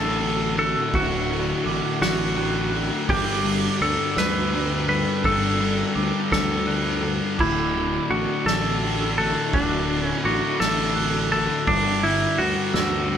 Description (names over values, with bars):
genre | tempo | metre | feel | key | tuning
post-rock | 56 BPM (dotted quarters) | 6/8 | straight | D major | A4 = 441 Hz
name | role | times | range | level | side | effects
clean lap steel guitar | melody | 0.0-13.2 s | D4 to B4 | -25 LUFS | equal | none
shimmering ambient pad | sustained chords | 0.1-13.2 s | D3 to A4 | -34 LUFS | right 1 dB | chorus, built-in reverb
glockenspiel with rubber mallets | arpeggios | 0.0-13.2 s | D6 to F#6 | -32 LUFS | right 8 dB | none
thick fuzz guitar | riff | 0.0-13.2 s | D2 to G3 | -26 LUFS | left 6 dB | distortion
growling fingered electric bass | bass | 0.0-13.2 s | D1 to D2 | -29 LUFS | right 1 dB | overdrive
soft-mallet drum kit | drums | 0.2-13.2 s | crash cymbal, kick drum, ride cymbal, snare drum | -26 LUFS | right 2 dB | none
room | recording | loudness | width
moderate studio reverb, RT60 0.6 s | band playing live in one room | -20 LUFS | side -8 dB against mid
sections
0.0-13.2 A section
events
none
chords
0.0 Dadd9; 3.1 Gsus2; 7.4 Dadd9; 11.7 Gsus2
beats
| 0.94 2.01 | 3.09 4.16 | 5.24 6.31 | 7.39 8.46 | 9.53 10.60 | 11.68 12.75